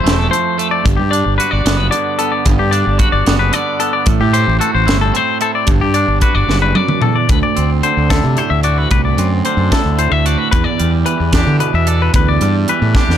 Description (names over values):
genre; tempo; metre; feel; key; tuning
math rock and midwest emo; 74 BPM (dotted quarters); 6/8; straight; G major; A4 = 440 Hz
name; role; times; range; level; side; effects
twangy electric guitar; accompaniment; 0.0-13.2 s; D2 to A4; -19 LUFS; right 10 dB; plate reverb
twangy electric guitar; arpeggios; 0.0-13.2 s; G4 to E5; -17 LUFS; left 8 dB; tape echo, plate reverb
fuzz fingered electric bass; bass; 0.0-13.2 s; E1 to D3; -16 LUFS; equal; overdrive
crisp fusion drum kit; drums; 0.1-13.2 s; hi-hat, kick drum, snare drum, toms; -17 LUFS; equal; none
room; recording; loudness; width
light reverb; dark, warm production; -12 LUFS; side -10 dB against mid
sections
0.0-7.3 A section; 7.3-13.2 B section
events
drum fill 6.5-7.3, 12.9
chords
0.0 Fmaj7; 0.8 Gmaj7; 4.1 Am7; 5.7 Gmaj7; 7.3 D9; 10.5 Em7